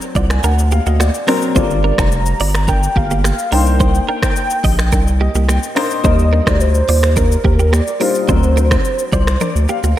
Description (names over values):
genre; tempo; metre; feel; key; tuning
afrobeats; 107 BPM; 4/4; straight; C minor; A4 = 440 Hz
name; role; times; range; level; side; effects
dark baby grand piano; accompaniment; 0.0-10.0 s; F#3 to Bb5; -21 LUFS; left 3 dB; lush chorus
afro-pop drum kit; drums; 0.0-10.0 s; finger snaps, hi-hat, kick drum, rim click, shaker, toms; -18 LUFS; equal; none
direct-recorded clean electric guitar; riff; 0.2-9.9 s; A#3 to Eb5; -23 LUFS; right 6 dB; warbly pitch drift, diffuse ambient delay
saturated sub bass; bass; 0.2-9.9 s; F1 to Eb2; -14 LUFS; equal; none
warm velvety synth lead; melody; 1.6-9.9 s; Bb4 to Bb5; -21 LUFS; equal; chorus, diffuse ambient delay
room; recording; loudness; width
light reverb, digital ambience; none; -12 LUFS; side -13 dB against mid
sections
0.0-10.0 A section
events
grand piano fill 0.0-1.6, 4.9-6.0, 8.8-10.0; drum fill 9.4-10.0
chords
0.0 D7alt; 1.6 Gm7; 3.5 Cm9; 6.0 Ebmaj7; 8.3 D7alt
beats
0.44 1.00 | 1.56 2.12 2.68 3.24 | 3.80 4.36 4.92 5.48 | 6.04 6.61 7.17 7.73 | 8.29 8.85 9.41 9.97